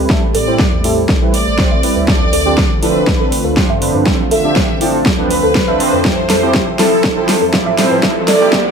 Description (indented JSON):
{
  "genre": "progressive house",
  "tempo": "121 BPM",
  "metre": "4/4",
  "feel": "straight",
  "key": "unclear",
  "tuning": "A4 = 444 Hz",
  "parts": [
    { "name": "lush unison pad", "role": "sustained chords", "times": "0.0-8.7 s", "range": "D3 to A4", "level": "-20 LUFS", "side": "equal", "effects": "chorus, sidechain pumping" },
    { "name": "soft round pluck", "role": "arpeggios", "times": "0.0-8.6 s", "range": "E4 to E5", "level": "-20 LUFS", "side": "right 1 dB", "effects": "wide subtle chorus, sidechain pumping, ping-pong delay" },
    { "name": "soft supersaw", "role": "stabs", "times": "0.0-8.6 s", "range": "A2 to D5", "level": "-18 LUFS", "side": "right 2 dB", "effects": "analog chorus, sidechain pumping, low-pass filter, ping-pong delay" },
    { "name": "round analog bass", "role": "bass", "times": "0.0-8.7 s", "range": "D1 to A2", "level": "-25 LUFS", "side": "equal", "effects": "sidechain pumping" },
    { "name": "big-room dance drum kit", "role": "drums", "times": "0.1-8.6 s", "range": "hi-hat, snare drum", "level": "-17 LUFS", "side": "right 1 dB", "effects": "sidechain pumping on hats" },
    { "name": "electronic kick drum", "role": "drums", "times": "0.1-8.6 s", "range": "none", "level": "-16 LUFS", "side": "equal", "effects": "overdrive" },
    { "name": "warm velvety synth lead", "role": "melody", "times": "0.3-8.7 s", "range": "A4 to E5", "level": "-22 LUFS", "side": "left 2 dB", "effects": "none" },
    { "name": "bright studio violin section", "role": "second line", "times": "0.3-8.7 s", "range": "A4 to E5", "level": "-22 LUFS", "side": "equal", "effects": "sidechain pumping, low-pass filter, ping-pong delay" },
    { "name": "riser", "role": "sound effects", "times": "7.2-8.7 s", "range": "none", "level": "-26 LUFS", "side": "right 2 dB", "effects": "none" }
  ],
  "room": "wet plate reverb, RT60 1.3 s",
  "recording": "dreamy mix soaked in reverb, high-pass filter",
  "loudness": "-11 LUFS",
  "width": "side -6 dB against mid",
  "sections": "0.0-8.7 A section",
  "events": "build-up 0.0-8.7; drum fill 0.0-8.7; filter sweep on synth pluck 0.0-8.7; filter sweep on supersaw synth 0.0-8.7",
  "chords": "0.0 Am7; 2.1 Dm7; 6.0 Fmaj7"
}